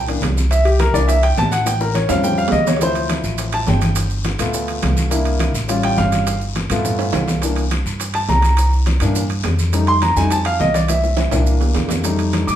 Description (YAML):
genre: Afro-Cuban jazz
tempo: 208 BPM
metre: 4/4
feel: straight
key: C mixolydian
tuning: A4 = 438 Hz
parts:
  - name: warm concert grand piano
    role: accompaniment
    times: 0.0-12.6 s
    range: E3 to D6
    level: -19 LUFS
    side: left 1 dB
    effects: none
  - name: upright bass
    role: bass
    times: 0.0-12.6 s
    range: G1 to A2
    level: -19 LUFS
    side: equal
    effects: none
  - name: bongos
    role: percussion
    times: 0.1-12.6 s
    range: none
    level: -30 LUFS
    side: left 3 dB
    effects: none
  - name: congas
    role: percussion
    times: 0.1-12.6 s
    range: none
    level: -26 LUFS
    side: equal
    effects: none
  - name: maracas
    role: percussion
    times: 0.1-12.6 s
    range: none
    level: -31 LUFS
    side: right 6 dB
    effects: none
  - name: timbales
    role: percussion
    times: 0.1-12.5 s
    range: none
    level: -27 LUFS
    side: right 6 dB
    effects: none
  - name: guiro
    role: percussion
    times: 0.2-12.6 s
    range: none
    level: -31 LUFS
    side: left 5 dB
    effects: none
room: moderate large studio reverb, RT60 0.9 s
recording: band playing live in one room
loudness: -15 LUFS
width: side -11 dB against mid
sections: 0.0-7.4 A section; 7.4-12.6 A section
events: grand piano solo 0.0-12.6; drum fill 1.7-2.8, 7.0-7.4, 10.9-12.0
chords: 0.0 C7; 1.7 Aaug7; 2.8 Dm7; 4.0 G7; 5.1 C7; 5.7 Aaug7; 6.3 G7; 7.4 C7; 9.7 F7; 10.9 C7; 12.0 F7